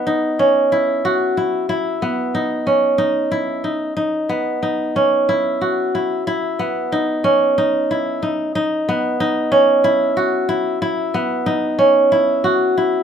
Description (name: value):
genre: contemporary instrumental, contemporary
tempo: 185 BPM (eighths)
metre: 7/8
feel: straight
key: unclear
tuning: A4 = 440 Hz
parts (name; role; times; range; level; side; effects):
- kora; solo; 0.0-13.0 s; B3 to F#4; -15 LUFS; equal; none
room: moderate studio reverb, RT60 0.8 s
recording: none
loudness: -15 LUFS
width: side -8 dB against mid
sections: 0.0-13.0 A section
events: none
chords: 0.0 B; 0.7 Badd11; 3.0 B; 5.3 Badd11; 7.6 B; 9.8 Badd11; 12.1 Bsus24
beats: 0.09 0.41 | 0.73 1.06 1.38 1.71 2.03 2.36 2.68 | 3.01 3.33 3.66 3.98 4.31 4.64 4.97 | 5.30 5.63 5.95 6.28 6.60 6.93 7.25 | 7.57 7.90 8.22 8.54 8.87 9.19 9.51 | 9.83 10.16 10.48 10.81 11.13 11.46 11.79 | 12.11 12.44 12.77